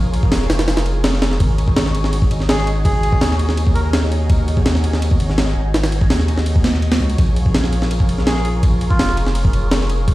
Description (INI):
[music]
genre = drum and bass, jungle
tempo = 166 BPM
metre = 4/4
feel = straight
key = unclear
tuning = A4 = 440 Hz
[part]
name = soft string machine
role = sustained chords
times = 0.0-10.1 s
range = Eb4 to Db5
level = -27 LUFS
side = equal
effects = phaser, ensemble chorus
[part]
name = saturated sub bass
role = bass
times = 0.0-10.1 s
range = F1 to Eb2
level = -18 LUFS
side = equal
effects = none
[part]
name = jungle sampler-style drum kit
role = drums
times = 0.1-10.1 s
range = hi-hat, kick drum, ride cymbal, snare drum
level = -17 LUFS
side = equal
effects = none
[part]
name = melodica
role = melody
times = 2.5-3.9, 8.3-9.2 s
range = F4 to Bb4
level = -25 LUFS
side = right 1 dB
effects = dub echo
[sound]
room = little or no reverb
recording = played on a big sound system in a bare room, large studio reverb, vinyl crackle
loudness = -14 LUFS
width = side -17 dB against mid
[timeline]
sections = 0.0-10.1 A section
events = none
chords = 0.0 Bbm7; 1.4 Ab7sus4; 7.2 Bbm7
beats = 0.32 0.68 1.04 | 1.40 1.76 2.12 2.48 | 2.85 3.21 3.57 3.93 | 4.29 4.65 5.01 5.38 | 5.74 6.10 6.46 6.82 | 7.18 7.54 7.91 8.27 | 8.63 8.99 9.35 9.71 | 10.07